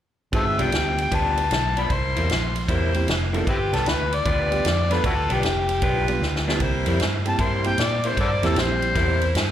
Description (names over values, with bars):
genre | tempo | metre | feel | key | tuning
electric blues shuffle | 153 BPM | 4/4 | swing 66% on 8ths | unclear | A4 = 440 Hz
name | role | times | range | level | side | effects
barky reed electric piano | accompaniment | 0.3-8.9 s | G3 to A4 | -29 LUFS | right 3 dB | overdrive, slapback echo
electric guitar through a small old amp | riff | 0.3-9.4 s | G2 to E4 | -30 LUFS | left 3 dB | analog chorus, slapback echo
warm saxophone section | stabs | 0.3-9.5 s | E4 to C5 | -31 LUFS | right 1 dB | slapback echo, tape echo
vintage muted fingered electric bass | bass | 0.3-9.5 s | F1 to Bb2 | -25 LUFS | equal | none
swinging big-band drum kit | drums | 0.3-9.5 s | kick drum, ride cymbal, snare drum | -26 LUFS | right 1 dB | none
overdriven harmonica | melody | 0.4-9.3 s | C4 to C6 | -25 LUFS | left 3 dB | slapback echo
room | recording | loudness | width
light reverb | live gig heard through the venue's PA, club reverb | -20 LUFS | side -10 dB against mid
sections
0.3-9.5 A section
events
harmonica solo 0.3-9.5; drum fill 6.2-6.6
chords
0.3 G7; 1.9 C7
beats
| 0.33 0.72 1.11 1.51 | 1.90 2.29 2.69 3.08 | 3.47 3.86 4.25 4.65 | 5.04 5.43 5.82 6.21 | 6.61 7.00 7.39 7.78 | 8.17 8.56 8.96 9.35